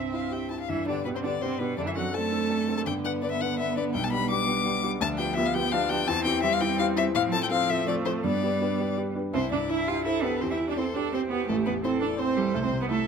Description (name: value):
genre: quick classical-period movement for piano quartet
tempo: 167 BPM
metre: 3/4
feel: straight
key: G major, C major from 5.0 s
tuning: A4 = 440 Hz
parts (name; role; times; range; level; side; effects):
- bright cello; second line; 0.0-13.0 s; B2 to F4; -30 LUFS; right 8 dB; none
- clear grand piano; accompaniment; 0.0-13.1 s; A1 to C5; -30 LUFS; left 3 dB; none
- rich viola; accompaniment; 0.0-13.1 s; A3 to E5; -33 LUFS; right 4 dB; none
- rich violin; melody; 0.1-13.1 s; G4 to D6; -29 LUFS; left 8 dB; none
room: light reverb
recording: close, detailed microphones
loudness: -24 LUFS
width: side -6 dB against mid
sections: 0.7-9.3 A section; 9.3-13.1 B section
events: none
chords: 0.0 C; 0.7 G; 1.8 D7/F#; 2.9 G; 3.9 G/B; 5.0 G7/D; 6.1 C/E; 7.1 F/A; 8.2 G; 9.3 C; 10.4 C/E; 11.5 Am; 12.5 Am/C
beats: 0.32 | 0.69 1.06 1.42 | 1.78 2.14 2.50 | 2.86 3.23 3.58 | 3.94 4.30 4.65 | 5.01 5.36 5.72 | 6.07 6.43 6.78 | 7.14 7.50 7.86 | 8.23 8.60 8.96 | 9.33 9.69 10.05 | 10.41 10.77 11.13 | 11.49 11.84 12.20 | 12.55 12.90